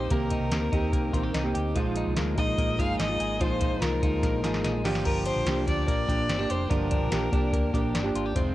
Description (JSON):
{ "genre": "jangly indie pop", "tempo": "145 BPM", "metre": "4/4", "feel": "straight", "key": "unclear", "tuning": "A4 = 440 Hz", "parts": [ { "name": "rich violin", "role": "melody", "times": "0.0-7.9 s", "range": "Bb4 to F5", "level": "-32 LUFS", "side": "left 1 dB", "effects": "cassette tape" }, { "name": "fingerpicked plugged-in steel-string acoustic guitar", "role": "accompaniment", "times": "0.0-8.5 s", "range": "F2 to G4", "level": "-30 LUFS", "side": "right 4 dB", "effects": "cassette tape" }, { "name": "twelve-string electric guitar", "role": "arpeggios", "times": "0.0-8.5 s", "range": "F3 to Ab4", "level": "-32 LUFS", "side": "left 4 dB", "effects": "cassette tape" }, { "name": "hollow-body short-scale fingered electric bass", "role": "bass", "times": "0.0-8.5 s", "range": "F1 to Eb2", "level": "-31 LUFS", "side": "equal", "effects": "none" }, { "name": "soft vintage rhythm box", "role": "drums", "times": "0.1-8.5 s", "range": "crash cymbal, hi-hat, kick drum, snare drum", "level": "-29 LUFS", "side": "equal", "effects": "cassette tape" } ], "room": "little or no reverb", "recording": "home recording on cassette", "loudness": "-24 LUFS", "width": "side -15 dB against mid", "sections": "0.0-8.5 A section", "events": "drum fill 4.2-5.1", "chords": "0.0 Cm7; 1.8 Bb7sus4; 4.9 Gm7" }